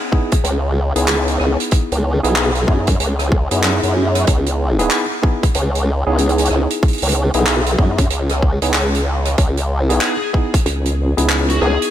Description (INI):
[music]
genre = glitch hop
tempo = 94 BPM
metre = 4/4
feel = swing 62% on 16ths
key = C# minor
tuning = A4 = 440 Hz
[part]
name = tine electric piano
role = stabs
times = 0.1-11.9 s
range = B3 to G#4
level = -22 LUFS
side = equal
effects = medium stereo tremolo, sidechain pumping, low-pass filter, tape echo
[part]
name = electronic kick drum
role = drums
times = 0.1-10.6 s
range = none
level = -15 LUFS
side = equal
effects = none
[part]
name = soft-mallet drum kit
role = drums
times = 0.3-11.9 s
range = handclaps, hi-hat, rim click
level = -21 LUFS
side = right 1 dB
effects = none
[part]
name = formant-sweep wobble bass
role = bass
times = 0.4-11.8 s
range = B1 to F#2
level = -17 LUFS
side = equal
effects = chorus, tube saturation
[part]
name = bluesy overdriven lead guitar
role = melody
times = 10.0-11.9 s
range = F#4 to G#4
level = -23 LUFS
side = left 5 dB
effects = distortion, tape echo
[part]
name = vowel-sweep wobble bass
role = bass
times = 10.7-11.6 s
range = C#2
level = -16 LUFS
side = equal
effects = chorus
[sound]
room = light reverb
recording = none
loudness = -14 LUFS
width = side -11 dB against mid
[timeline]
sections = 0.0-11.9 A section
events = none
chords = 0.0 C#m7